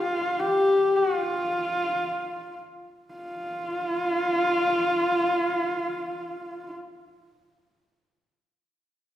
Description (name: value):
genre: mongolian traditional, Mongolian folk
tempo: free time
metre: none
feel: none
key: unclear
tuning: A4 = 440 Hz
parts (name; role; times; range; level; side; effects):
- warm horsehead fiddle; solo; 0.0-6.7 s; F4 to G4; -24 LUFS; equal; none
room: wet recital hall reverb, RT60 1.7 s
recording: heard from further back in the room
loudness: -23 LUFS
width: side -12 dB against mid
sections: 0.0-3.1 A section; 3.1-8.2 B section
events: slowing down 0.0-3.1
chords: none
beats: free time